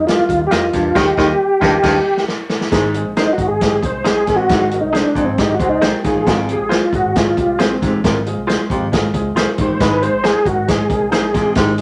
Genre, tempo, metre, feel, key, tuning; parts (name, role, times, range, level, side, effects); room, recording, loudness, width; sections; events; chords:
uptempo 1960s-style soul; 136 BPM; 4/4; straight; Ab major; A4 = 440 Hz
tonewheel organ; melody; 0.0-11.5 s; C4 to C5; -19 LUFS; equal; chorus vibrato, slow rotary speaker
vintage muted fingered electric bass; bass; 0.0-11.8 s; Ab1 to F2; -29 LUFS; equal
warm upright piano; accompaniment; 0.1-11.8 s; G3 to Bb4; -25 LUFS; equal
swinging big-band drum kit; drums; 0.1-11.8 s; crash cymbal, hi-hat, kick drum, snare drum; -21 LUFS; equal
direct-recorded clean electric guitar; stabs; 0.5-11.3 s; Eb4 to Eb5; -24 LUFS; equal
warm baritone saxophone; riff; 0.7-11.7 s; Eb2 to C3; -23 LUFS; equal
electric guitar through a small old amp; riff; 5.6-6.5 s; F4 to C5; -26 LUFS; equal
wet studio reverb, RT60 0.5 s; -16 LUFS; mono
0.0-2.7 A section; 2.7-11.8 B section
band accent 1.0-2.7; drum fill 1.8-2.7; tonewheel organ solo 2.7-11.8
0.0 Ebadd9; 2.7 Ab